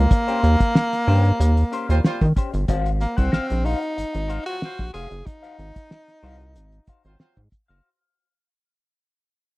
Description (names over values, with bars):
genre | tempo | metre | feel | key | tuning
funk | 93 BPM | 4/4 | straight | unclear | A4 = 442 Hz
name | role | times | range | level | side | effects
breathy tenor saxophone | melody | 0.0-7.2 s | Bb3 to Ab4 | -25 LUFS | equal | none
rubbery square bass | bass | 0.0-7.8 s | F1 to Eb3 | -19 LUFS | equal | none
semi-hollow electric guitar | accompaniment | 0.1-7.9 s | Db4 to Gb5 | -32 LUFS | left 6 dB | wah, spring reverb
cloth-damped thuddy drum kit | drums | 0.1-7.8 s | hi-hat, kick drum, snare drum | -20 LUFS | equal | none
mellow horn section | second line | 1.9-7.4 s | Gb3 to F5 | -29 LUFS | right 3 dB | none
room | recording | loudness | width
little or no reverb | dry, close 1970s-style studio recording | -18 LUFS | side -21 dB against mid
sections
0.0-7.8 A section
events
fade-out 0.0-7.8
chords
0.0 Eb13; 2.7 Ab13